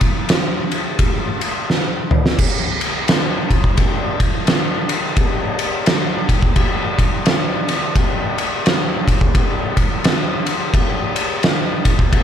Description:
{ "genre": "metal", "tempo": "86 BPM", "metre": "4/4", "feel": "swing 61% on 8ths", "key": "none", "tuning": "none", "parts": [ { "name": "oversized low-tuned drum kit", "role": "drums", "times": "0.0-12.2 s", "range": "crash cymbal, kick drum, ride cymbal, snare drum, toms", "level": "-15 LUFS", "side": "equal", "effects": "none" } ], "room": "little or no reverb", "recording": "none", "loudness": "-15 LUFS", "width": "side -9 dB against mid", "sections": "0.0-2.4 A section; 2.4-12.2 B section", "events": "drum fill 1.7-2.4", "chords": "none" }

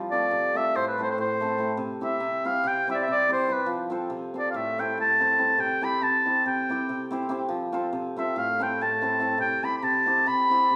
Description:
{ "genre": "balkan folk", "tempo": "284 BPM (eighths)", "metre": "9/8", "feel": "straight", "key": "C major", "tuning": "A4 = 441 Hz", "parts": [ { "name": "hammered dulcimer", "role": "accompaniment", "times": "0.0-10.8 s", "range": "A2 to C5", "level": "-32 LUFS", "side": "equal", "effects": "none" }, { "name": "warm oboe", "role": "melody", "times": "0.1-10.8 s", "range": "B4 to B5", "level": "-26 LUFS", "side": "equal", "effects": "none" } ], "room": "wet large studio reverb, RT60 1.3 s", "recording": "band playing live in one room", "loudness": "-26 LUFS", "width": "mono", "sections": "0.0-10.8 A section", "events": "oboe solo 0.0-10.8", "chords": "0.0 F; 0.7 Am; 1.8 C; 3.7 F; 4.5 Am; 5.6 C; 7.5 F; 8.3 Am; 9.4 C" }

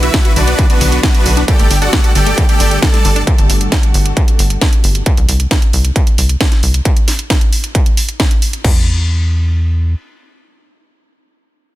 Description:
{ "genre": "uplifting trance", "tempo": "134 BPM", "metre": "4/4", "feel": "straight", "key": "unclear", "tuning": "A4 = 441 Hz", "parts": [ { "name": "supersaw chords", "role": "melody", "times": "0.0-3.2 s", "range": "B3 to A5", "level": "-18 LUFS", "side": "equal", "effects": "sidechain pumping, ping-pong delay" }, { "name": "lush unison pad", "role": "sustained chords", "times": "0.0-5.0 s", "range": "D3 to B4", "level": "-24 LUFS", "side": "right 1 dB", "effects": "chorus, sidechain pumping" }, { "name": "wide unison pluck", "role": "arpeggios", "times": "0.0-3.2 s", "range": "D3 to G4", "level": "-24 LUFS", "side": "left 2 dB", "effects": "sidechain pumping, ping-pong delay" }, { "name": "tight sequencer bass", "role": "bass", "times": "0.0-9.9 s", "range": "G1 to E2", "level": "-14 LUFS", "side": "equal", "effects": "sidechain pumping" }, { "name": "techno drum kit", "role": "drums", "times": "0.0-8.7 s", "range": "crash cymbal, hi-hat, snare drum", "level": "-18 LUFS", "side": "right 1 dB", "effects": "overdrive, small room ambience" }, { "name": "electronic kick drum", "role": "drums", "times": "0.1-8.7 s", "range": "none", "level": "-12 LUFS", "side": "equal", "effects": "distortion, overdrive, small room ambience" } ], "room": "little or no reverb", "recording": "dense, heavily limited modern master", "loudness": "-10 LUFS", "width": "side -16 dB against mid", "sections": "0.0-8.6 A section; 8.6-11.8 B section", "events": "drop 0.0-8.6", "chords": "0.0 Bm; 1.5 Gsus2; 5.1 N.C." }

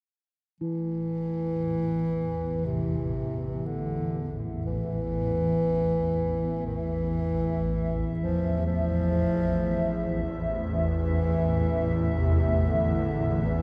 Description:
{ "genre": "dark ambient drone", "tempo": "60 BPM", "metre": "4/4", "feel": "straight", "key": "unclear", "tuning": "A4 = 441 Hz", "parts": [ { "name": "dark bass clarinet", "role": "melody", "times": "0.6-13.6 s", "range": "C3 to F3", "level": "-31 LUFS", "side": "equal", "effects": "delay" }, { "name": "dark analog pad", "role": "sustained chords", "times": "0.6-13.6 s", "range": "A3 to E5", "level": "-36 LUFS", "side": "equal", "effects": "chorus" }, { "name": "swarming drone", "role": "drone", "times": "1.5-13.6 s", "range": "A1 to E2", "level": "-31 LUFS", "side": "equal", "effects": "built-in reverb" }, { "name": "bronze singing bowl", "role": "texture", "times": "0.6-13.6 s", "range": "E3 to E4", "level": "-41 LUFS", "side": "equal", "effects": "none" } ], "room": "moderate huge ambient reverb, RT60 8.1 s", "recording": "in a vast, echoing space", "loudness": "-27 LUFS", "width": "mono", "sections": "0.6-13.6 A section", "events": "none", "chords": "0.6 A5" }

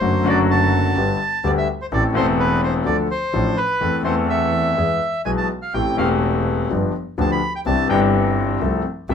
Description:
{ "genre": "tango", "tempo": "126 BPM", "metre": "4/4", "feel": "rubato", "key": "A minor", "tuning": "A4 = 441 Hz", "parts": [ { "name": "bandoneon", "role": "melody", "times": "0.0-9.1 s", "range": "B4 to B5", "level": "-22 LUFS", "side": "right 1 dB", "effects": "none" }, { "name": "bright concert grand piano", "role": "accompaniment", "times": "0.0-9.1 s", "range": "E1 to A4", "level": "-20 LUFS", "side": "left 3 dB", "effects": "none" }, { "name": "clear double bass", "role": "bass", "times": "0.0-9.1 s", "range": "E1 to E2", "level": "-23 LUFS", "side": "right 2 dB", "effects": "none" } ], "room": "moderate club reverb, RT60 0.5 s", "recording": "minimal, uncompressed stereo recording", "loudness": "-17 LUFS", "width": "side -7 dB against mid", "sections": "0.0-9.1 A section", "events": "none", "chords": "0.0 D/F#; 1.0 G; 1.9 Am; 2.9 Dm; 3.8 Am/E; 4.8 E; 5.7 Am7; 6.7 G7; 7.7 Cadd9; 8.6 F/C" }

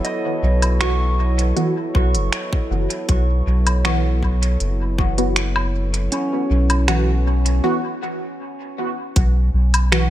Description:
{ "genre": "ambient dub", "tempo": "79 BPM", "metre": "4/4", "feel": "straight", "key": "B mixolydian", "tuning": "A4 = 440 Hz", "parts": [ { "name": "warm analog pad", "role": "sustained chords", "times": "0.0-7.6 s", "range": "F#3 to C#5", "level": "-27 LUFS", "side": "right 1 dB", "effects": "chorus" }, { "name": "pedal steel guitar", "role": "arpeggios", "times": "0.0-7.6 s", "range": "C#4 to C#6", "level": "-28 LUFS", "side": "equal", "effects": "dub echo" }, { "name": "organic electronic drum kit", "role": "drums", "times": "0.0-10.1 s", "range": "finger snaps, hi-hat, woodblock", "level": "-24 LUFS", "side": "right 1 dB", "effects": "studio reverb, dub echo" }, { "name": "soft dub sub bass", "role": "bass", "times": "0.4-10.1 s", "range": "F#1 to B1", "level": "-18 LUFS", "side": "equal", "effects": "none" }, { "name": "filtered dub chord stab", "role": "stabs", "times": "0.8-10.1 s", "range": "E3 to F#4", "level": "-25 LUFS", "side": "right 1 dB", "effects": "phaser, analog chorus, dub echo" }, { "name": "electronic kick drum", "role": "drums", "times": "1.9-9.3 s", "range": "none", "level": "-20 LUFS", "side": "equal", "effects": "studio reverb" } ], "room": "little or no reverb", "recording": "none", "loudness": "-17 LUFS", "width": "side -13 dB against mid", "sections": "0.0-9.2 A section", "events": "break 7.6-9.2", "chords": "0.0 Bsus4" }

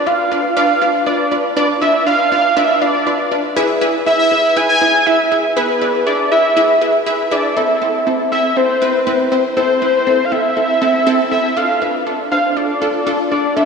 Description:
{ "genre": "pop", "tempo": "120 BPM", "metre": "4/4", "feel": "straight", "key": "A harmonic minor", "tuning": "A4 = 437 Hz", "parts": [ { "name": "fat analog lead", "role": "melody", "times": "0.0-13.7 s", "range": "B4 to G#5", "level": "-14 LUFS", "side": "equal", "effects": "chorus, tape echo" }, { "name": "wide unison pluck", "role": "accompaniment", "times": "0.1-13.7 s", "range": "C4 to F5", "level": "-17 LUFS", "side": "equal", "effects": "wide subtle chorus" } ], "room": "wet lush hall reverb, RT60 3.0 s", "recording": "dreamy mix soaked in reverb, small room reverb", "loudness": "-12 LUFS", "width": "side -5 dB against mid", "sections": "0.0-7.6 A section; 7.6-13.7 B section", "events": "none", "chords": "0.0 Bdim; 3.6 E; 7.6 Am; 11.6 Dm" }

